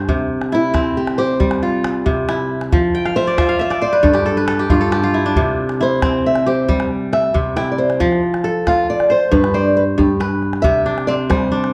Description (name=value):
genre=west african traditional, West African string and xylophone music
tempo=91 BPM (dotted quarters)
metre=12/8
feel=straight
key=C major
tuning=A4 = 440 Hz
part: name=kora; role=arpeggios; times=0.0-11.7 s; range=G2 to G5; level=-19 LUFS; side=equal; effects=none
part: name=calabash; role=percussion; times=0.1-11.7 s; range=none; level=-24 LUFS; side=equal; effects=none
part: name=fingerpicked old ladder-braced acoustic guitar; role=melody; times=0.5-11.7 s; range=E4 to G5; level=-20 LUFS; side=equal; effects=none
room=moderate recital hall reverb, RT60 1.5 s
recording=dark, warm production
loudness=-17 LUFS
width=mono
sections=0.1-10.6 A section; 10.6-11.7 B section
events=steel-string acoustic guitar solo 0.1-10.6; kora fill 2.9-5.4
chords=0.1 C; 2.7 F5; 4.0 N.C.; 5.4 C; 8.0 F; 9.3 G; 10.6 C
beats=| 0.08 0.74 1.40 2.06 | 2.73 3.38 4.05 4.71 | 5.37 6.03 6.68 7.34 | 8.01 8.66 9.32 9.98 | 10.64 11.30